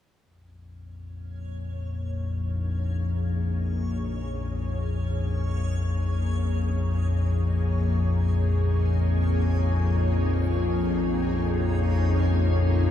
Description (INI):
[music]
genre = dark ambient drone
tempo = free time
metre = none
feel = none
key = Bb minor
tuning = A4 = 439 Hz
[part]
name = granular cloud pad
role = sustained chords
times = 1.4-12.9 s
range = Bb3 to Db5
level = -34 LUFS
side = equal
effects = built-in reverb
[part]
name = analog drone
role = drone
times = 0.8-12.9 s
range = Bb1 to F2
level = -23 LUFS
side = left 1 dB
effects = chorus
[part]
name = backwards swelling texture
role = texture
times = 1.4-12.9 s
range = Db4 to Db5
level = -39 LUFS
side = right 1 dB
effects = built-in reverb
[sound]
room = wet cathedral reverb, RT60 5.7 s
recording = studio ambience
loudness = -23 LUFS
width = side -10 dB against mid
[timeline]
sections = 0.3-12.9 A section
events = fade-in on ambient pad 0.3-12.9; fade-in on synth texture 0.3-12.9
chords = 0.3 Bbm